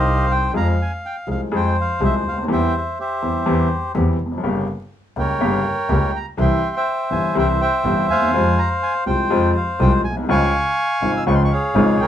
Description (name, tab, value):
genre	tango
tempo	123 BPM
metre	4/4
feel	rubato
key	F harmonic minor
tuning	A4 = 440 Hz
part	bandoneon	melody	0.0-12.1 s	G4 to E6	-20 LUFS	equal	none
part	clear upright piano	accompaniment	0.0-12.0 s	G1 to Ab4	-20 LUFS	left 1 dB	none
part	clear double bass	bass	0.0-12.1 s	F1 to F2	-22 LUFS	equal	none
room	wet club reverb, RT60 0.5 s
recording	minimal, uncompressed stereo recording, vinyl crackle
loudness	-17 LUFS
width	side -10 dB against mid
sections	0.5-12.1 A section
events	none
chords	0.0 Cm; 0.5 Fm; 2.5 C/E; 4.4 Gdim; 6.4 C; 8.3 Fm; 10.3 Db